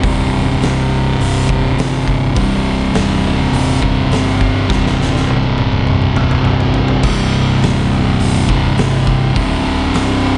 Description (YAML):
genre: stoner and doom metal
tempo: 103 BPM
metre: 4/4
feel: straight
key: C minor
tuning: A4 = 440 Hz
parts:
  - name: thick fuzz guitar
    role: riff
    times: 0.0-10.4 s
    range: C2 to C3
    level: -17 LUFS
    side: equal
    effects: distortion
  - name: fuzz fingered electric bass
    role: bass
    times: 0.0-10.4 s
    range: C1 to G1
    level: -21 LUFS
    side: equal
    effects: overdrive
  - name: oversized low-tuned drum kit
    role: drums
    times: 0.0-10.1 s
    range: crash cymbal, hi-hat, kick drum, snare drum, toms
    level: -22 LUFS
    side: equal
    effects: none
  - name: thick fuzz guitar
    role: riff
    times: 2.3-10.4 s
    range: C2 to C3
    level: -23 LUFS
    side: equal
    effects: distortion
room: small room reverb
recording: nothing above 10.7 kHz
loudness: -14 LUFS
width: mono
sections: 0.0-7.0 A section; 7.0-10.4 A section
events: drum fill 4.7-7.0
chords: 0.0 Cm